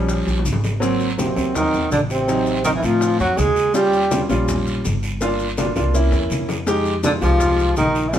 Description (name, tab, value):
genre	Afro-Cuban jazz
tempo	164 BPM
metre	4/4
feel	straight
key	unclear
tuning	A4 = 440 Hz
part	warm grand piano	accompaniment	0.0-8.2 s	Eb3 to G4	-22 LUFS	equal	none
part	upright bass	bass	0.0-8.2 s	G1 to A2	-23 LUFS	equal	none
part	bongos	percussion	0.1-8.2 s	none	-31 LUFS	left 3 dB	none
part	congas	percussion	0.1-8.2 s	none	-28 LUFS	left 2 dB	none
part	guiro	percussion	0.1-8.2 s	none	-33 LUFS	right 3 dB	none
part	maracas	percussion	0.1-8.2 s	none	-35 LUFS	left 4 dB	none
part	clear trombone	melody	1.2-4.3, 7.0-8.2 s	C4 to Ab4	-20 LUFS	equal	none
part	warm tenor saxophone	second line	1.2-4.3, 7.0-8.2 s	C3 to Ab3	-23 LUFS	right 2 dB	none
room	moderate stone room reverb, RT60 1.1 s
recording	band playing live in one room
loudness	-16 LUFS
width	side -10 dB against mid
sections	0.0-8.2 A section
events	drum fill 0.3-0.8, 5.6-6.7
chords	0.0 Eb9 (rootless); 0.8 Ab9; 2.3 Adim7; 3.7 Eb9; 5.2 Gm7; 5.9 C7b9; 6.7 Fm7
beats	0.08 0.45 | 0.82 1.18 1.55 1.92 | 2.28 2.65 3.01 3.38 | 3.75 4.11 4.48 4.84 | 5.21 5.57 5.94 6.31 | 6.67 7.04 7.40 7.77 | 8.13